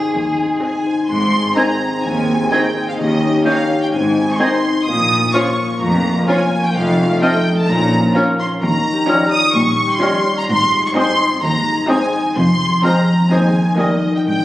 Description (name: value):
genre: cinematic, playful, whimsical film cue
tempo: 128 BPM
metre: 4/4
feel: straight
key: Ab major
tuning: A4 = 440 Hz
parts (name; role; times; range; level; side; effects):
- harpsichord; melody; 0.0-0.8 s; Ab4; -30 LUFS; right 4 dB; none
- rich studio violin section; second line; 0.0-14.1 s; F4 to Eb5; -28 LUFS; left 1 dB; none
- concert harp; arpeggios; 0.0-14.4 s; F2 to Db5; -19 LUFS; left 2 dB; none
- rich studio cello section; bass; 0.1-14.4 s; Eb2 to Bb2; -22 LUFS; right 1 dB; none
- warm studio double bass section; bass; 0.1-14.4 s; F1 to Eb2; -25 LUFS; right 1 dB; none
- rich studio violin section; melody; 0.6-14.4 s; Eb5 to Eb6; -19 LUFS; equal; none
- rich studio viola section; accompaniment; 0.6-14.1 s; Bb3 to Ab4; -22 LUFS; equal; none
- warm French horn section; sustained chords; 1.1-14.0 s; F3 to Ab4; -23 LUFS; left 2 dB; none
- mellow concert flute; second line; 1.6-13.9 s; Eb6 to Ab6; -23 LUFS; equal; none
- warm clarinet; second line; 1.6-14.0 s; Bb4 to Eb5; -26 LUFS; left 1 dB; none
- warm bassoon; accompaniment; 1.6-13.9 s; Eb3 to Bb3; -27 LUFS; right 1 dB; none
room: wet scoring stage reverb, RT60 1.7 s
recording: recorded on a phone in the room, club reverb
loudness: -13 LUFS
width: side -15 dB against mid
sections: 0.0-1.1 A section; 1.1-14.4 B section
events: none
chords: 0.0 Ab; 3.0 Eb7; 3.9 Ab; 4.9 Bbm; 6.8 F7; 7.7 Bbm; 8.6 Eb9; 10.5 Ab; 12.4 Fm; 13.3 Ab/Eb; 13.8 Eb